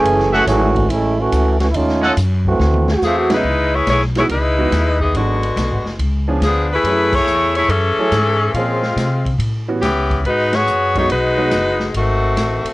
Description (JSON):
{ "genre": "jazz, big band swing", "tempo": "141 BPM", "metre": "4/4", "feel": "swing 67% on 8ths", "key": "C# minor", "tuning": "A4 = 440 Hz", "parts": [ { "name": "clear trombone section", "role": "second line", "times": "0.0-3.3 s", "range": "E3 to G#4", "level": "-16 LUFS", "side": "right 2 dB", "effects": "cassette tape" }, { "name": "upright bass", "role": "bass", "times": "0.0-12.7 s", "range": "F#1 to B#2", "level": "-19 LUFS", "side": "equal", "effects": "none" }, { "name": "swinging big-band drum kit", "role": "drums", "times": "0.1-12.7 s", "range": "crash cymbal, hi-hat, kick drum, ride cymbal, snare drum, toms", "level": "-26 LUFS", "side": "equal", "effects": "cassette tape" }, { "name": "clear trumpet section", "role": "stabs", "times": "0.3-2.1 s", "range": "G#4 to F#5", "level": "-16 LUFS", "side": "equal", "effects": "cassette tape" }, { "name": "clear grand piano", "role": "accompaniment", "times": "0.5-0.7, 3.3-11.5 s", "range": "C#3 to G#4", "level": "-21 LUFS", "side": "right 2 dB", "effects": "cassette tape" }, { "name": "edgy saxophone section", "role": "melody", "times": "3.0-12.7 s", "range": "D3 to C#5", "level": "-16 LUFS", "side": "left 1 dB", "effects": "cassette tape" } ], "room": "light reverb", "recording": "home recording on cassette", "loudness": "-14 LUFS", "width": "side -19 dB against mid", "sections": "0.0-3.4 A section; 3.4-12.7 B section", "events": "trombone section solo 0.0-3.4; drum fill 2.6-3.0; band accent 3.2, 7.1, 10.5", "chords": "0.1 F#m9; 1.7 D#m7b5; 2.6 D9; 3.4 C#m11; 5.1 G#m7b5; 6.0 C#7b9; 6.8 F#m9; 8.5 A#m9; 9.4 A13; 10.2 G#m7; 11.9 G#7b9", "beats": "| 0.05 0.47 0.90 1.32 | 1.75 2.17 2.59 3.02 | 3.44 3.87 4.29 4.72 | 5.14 5.57 5.99 6.42 | 6.84 7.27 7.70 8.12 | 8.54 8.97 9.40 9.82 | 10.25 10.67 11.10 11.52 | 11.95 12.38" }